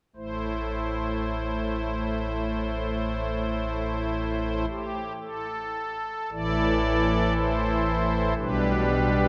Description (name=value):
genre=classical, chorale-style piece for pipe organ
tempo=60 BPM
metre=3/4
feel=rubato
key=A minor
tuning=A4 = 440 Hz
part: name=pipe organ, strings celeste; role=solo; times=0.2-9.3 s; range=A1 to D5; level=-27 LUFS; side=equal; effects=none
room=wet church reverb, RT60 3.2 s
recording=none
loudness=-27 LUFS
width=mono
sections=0.2-6.3 A section; 6.3-9.3 B section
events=none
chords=0.2 Am; 8.4 G/B